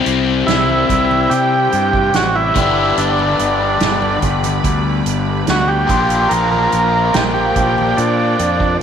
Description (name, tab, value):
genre	psychedelic rock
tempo	72 BPM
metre	4/4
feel	straight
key	unclear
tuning	A4 = 440 Hz
part	bright studio string section	sustained chords	0.0-8.8 s	E4 to B5	-27 LUFS	right 10 dB	none
part	overdriven electric guitar	riff	0.0-8.8 s	G2 to G4	-18 LUFS	left 8 dB	phaser
part	fuzz fingered electric bass	bass	0.1-8.8 s	G1 to C3	-20 LUFS	right 2 dB	overdrive
part	soft-mallet drum kit	drums	0.1-8.8 s	hi-hat, kick drum, snare drum	-21 LUFS	right 3 dB	none
part	combo organ	melody	0.5-8.8 s	D4 to Bb4	-16 LUFS	right 2 dB	tape echo
part	congas	percussion	0.5-8.0 s	none	-29 LUFS	right 10 dB	none
room	moderate echo chamber reverb, RT60 2.1 s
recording	1960s-style stereo with parts hard left and right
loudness	-12 LUFS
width	side -8 dB against mid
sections	0.0-8.8 A section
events	none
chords	0.0 C; 2.6 G; 5.9 Bb6